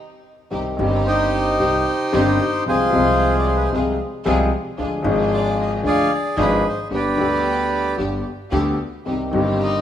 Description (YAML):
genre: tango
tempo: 112 BPM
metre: 4/4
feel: rubato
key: C harmonic minor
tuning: A4 = 438 Hz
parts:
  - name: warm concert grand piano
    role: accompaniment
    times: 0.5-9.8 s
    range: G1 to Ab4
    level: -20 LUFS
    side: left 3 dB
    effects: none
  - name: rich studio string section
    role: stabs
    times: 0.5-9.8 s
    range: B3 to Ab4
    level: -29 LUFS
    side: right 3 dB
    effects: none
  - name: upright bass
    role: bass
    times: 0.5-9.8 s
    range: G1 to D2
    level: -26 LUFS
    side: right 1 dB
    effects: none
  - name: bandoneon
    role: melody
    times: 1.1-9.8 s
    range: Eb4 to F5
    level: -20 LUFS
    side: right 2 dB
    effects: none
  - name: warm violin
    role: second line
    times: 9.6-9.8 s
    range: Eb4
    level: -30 LUFS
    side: left 1 dB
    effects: none
room: light reverb, small room ambience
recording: rough home demo mix, small room reverb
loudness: -17 LUFS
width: side -10 dB against mid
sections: 0.5-9.8 A section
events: band accent 0.0-0.5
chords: 0.0 N.C.; 0.5 Cm; 2.7 Fm/C; 4.8 Ddim; 6.9 G; 9.1 Cm